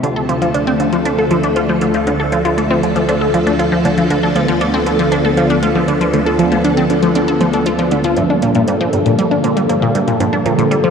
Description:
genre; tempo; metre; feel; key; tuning
ambient, sequencer-driven space music; 118 BPM; 4/4; straight; unclear; A4 = 436 Hz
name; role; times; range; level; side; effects
phased string machine; sustained chords; 0.0-10.9 s; D2 to A4; -15 LUFS; equal; ensemble chorus, phaser
mellow electric guitar; arpeggios; 0.0-8.2 s; A3 to D5; -23 LUFS; left 2 dB; auto-pan, tape echo
resonant blip pluck; riff; 0.0-10.9 s; G2 to A4; -16 LUFS; equal; phaser, cassette tape, tape echo
electronic hi-hat and bongos; percussion; 0.0-10.8 s; none; -30 LUFS; left 2 dB; tape echo
room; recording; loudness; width
wet cathedral reverb, RT60 6.2 s; in a vast, echoing space; -12 LUFS; side -6 dB against mid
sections
0.0-8.2 A section; 8.2-10.9 B section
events
none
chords
0.0 Dm; 8.2 Gm7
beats
| 0.04 0.54 1.05 1.56 | 2.07 2.58 3.09 3.60 | 4.10 4.61 5.12 5.63 | 6.14 6.64 7.15 7.66 | 8.17 8.68 9.19 9.70 | 10.21 10.71

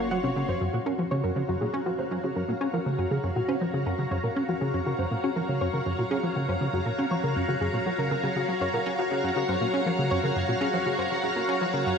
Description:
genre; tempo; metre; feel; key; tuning
ambient, sequencer-driven space music; 120 BPM; 4/4; straight; Gb lydian; A4 = 441 Hz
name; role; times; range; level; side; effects
string machine, full ensemble; sustained chords; 0.0-12.0 s; Gb4 to C6; -29 LUFS; equal; ensemble chorus
plucky analog bass; riff; 0.0-11.9 s; Gb2 to Db4; -28 LUFS; equal; analog chorus, tape echo
warm sub bass; bass; 0.0-0.6 s; Gb1; -45 LUFS; equal; none
soft round pluck; arpeggios; 0.1-11.8 s; Db4 to Gb5; -32 LUFS; left 2 dB; chorus, auto-pan, tape echo
room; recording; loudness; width
wet concert hall reverb, RT60 2.0 s; none; -25 LUFS; side -6 dB against mid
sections
0.6-12.0 A section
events
none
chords
0.0 Gbmaj7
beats
0.11 | 0.61 1.11 1.61 2.11 | 2.61 3.11 3.61 4.11 | 4.61 5.11 5.61 6.11 | 6.61 7.11 7.61 8.11 | 8.61 9.11 9.61 10.11 | 10.61 11.11 11.61

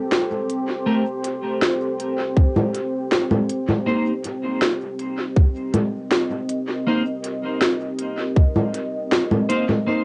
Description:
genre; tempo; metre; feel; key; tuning
ambient dub; 80 BPM; 4/4; straight; C dorian; A4 = 440 Hz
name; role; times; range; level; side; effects
deep dark ambient pad; sustained chords; 0.0-10.0 s; C4 to Eb5; -28 LUFS; equal; chorus, built-in reverb, cassette tape
organic electronic drum kit; drums; 0.1-9.8 s; congas, hi-hat, snare drum; -24 LUFS; equal; cassette tape, dub echo
clean electric guitar; stabs; 0.9-10.0 s; A3 to C5; -25 LUFS; equal; lush chorus, cassette tape, dub echo
electronic kick drum; drums; 2.4-8.5 s; none; -17 LUFS; equal; cassette tape
room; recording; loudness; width
light reverb; home recording on cassette, nothing above 10.7 kHz; -22 LUFS; mono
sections
0.0-10.0 A section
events
none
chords
0.0 Gsus2; 3.9 Cm7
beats
0.12 | 0.87 1.62 2.37 3.12 | 3.87 4.62 5.37 6.12 | 6.87 7.62 8.37 9.12 | 9.87

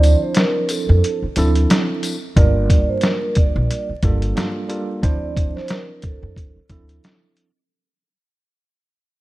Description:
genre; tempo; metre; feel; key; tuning
hip hop, boom-bap hip-hop; 90 BPM; 4/4; swing 57% on 16ths; G minor; A4 = 445 Hz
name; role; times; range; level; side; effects
vibraphone with soft mallets; melody; 0.0-6.5 s; A4 to D5; -24 LUFS; right 3 dB; high-pass filter, low-pass filter, analog delay
mellow tine electric piano; accompaniment; 0.0-7.5 s; F3 to C5; -24 LUFS; right 2 dB; medium stereo tremolo, cassette tape, high-pass filter, low-pass filter
upright bass; bass; 0.0-7.0 s; G1 to F2; -17 LUFS; equal; none
trip hop sampler-style drum kit; drums; 0.0-7.5 s; hi-hat, kick drum, snare drum; -18 LUFS; equal; none
tambourine; percussion; 0.0-2.2 s; none; -32 LUFS; left 4 dB; none
room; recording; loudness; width
small room reverb; vinyl crackle; -16 LUFS; side -18 dB against mid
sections
0.0-2.4 A section; 2.4-7.7 B section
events
break 0.0-2.4; fade-out 2.4-7.7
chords
0.0 Dm9; 2.4 Gm9; 5.0 Dm9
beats
0.37 1.03 1.70 | 2.37 3.03 3.70 4.37 | 5.03 5.70 6.37 7.03

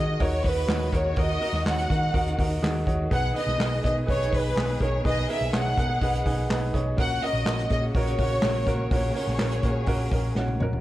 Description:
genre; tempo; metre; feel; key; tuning
piano-driven pop; 124 BPM; 4/4; straight; B major; A4 = 440 Hz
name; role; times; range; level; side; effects
warm studio violin section; melody; 0.0-10.3 s; B4 to F#5; -28 LUFS; equal; none
clear upright piano; accompaniment; 0.0-10.8 s; A#2 to G#5; -31 LUFS; right 2 dB; none
warm studio string section; sustained chords; 0.0-10.8 s; A#2 to G#4; -37 LUFS; left 2 dB; none
hollow-body short-scale picked electric bass; bass; 0.0-10.8 s; A#1 to D#3; -28 LUFS; equal; none
unplugged drum kit; drums; 0.2-10.8 s; handclaps, hi-hat, kick drum, snare drum, toms; -28 LUFS; equal; none
room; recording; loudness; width
light reverb, small room ambience; worn, warbling old tape, cassette tape, warbly pitch drift; -22 LUFS; side -15 dB against mid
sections
0.0-10.8 A section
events
upright piano fill 6.0-7.0, 10.1-10.8; drum fill 10.4-10.8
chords
0.0 D#m; 3.1 B6; 7.0 F#/A#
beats
0.21 0.69 | 1.17 1.66 2.14 2.62 | 3.11 3.59 4.08 4.56 | 5.04 5.53 6.01 6.49 | 6.98 7.46 7.95 8.43 | 8.91 9.40 9.88 10.36

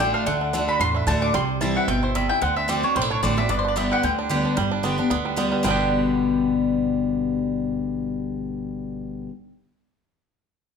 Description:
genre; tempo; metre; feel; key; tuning
bluegrass; 223 BPM; 4/4; swing 55% on 8ths; G major; A4 = 442 Hz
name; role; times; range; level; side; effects
bluegrass banjo; melody; 0.0-9.3 s; D3 to G4; -28 LUFS; right 8 dB; none
mandolin; melody; 0.0-9.3 s; C5 to D6; -24 LUFS; left 2 dB; none
picked steel-string acoustic guitar; accompaniment; 0.0-9.3 s; G2 to G4; -23 LUFS; left 2 dB; none
upright bass; bass; 0.0-9.3 s; G1 to E2; -30 LUFS; right 1 dB; none
room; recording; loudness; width
moderate large studio reverb, RT60 0.8 s; band playing live in one room; -20 LUFS; side -6 dB against mid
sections
0.0-4.6 A section; 4.6-5.6 B section; 5.6-7.8 C section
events
none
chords
0.0 D; 1.3 C; 2.4 D7; 3.5 G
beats
0.00 | 0.27 0.54 0.80 1.07 | 1.34 1.61 1.88 2.15 | 2.42 2.69 2.96 3.23 | 3.49 3.76 4.03 4.30 | 4.57 4.84 5.11 5.38 | 5.65 5.92 6.18 6.45 | 6.72 6.99 7.26 7.53

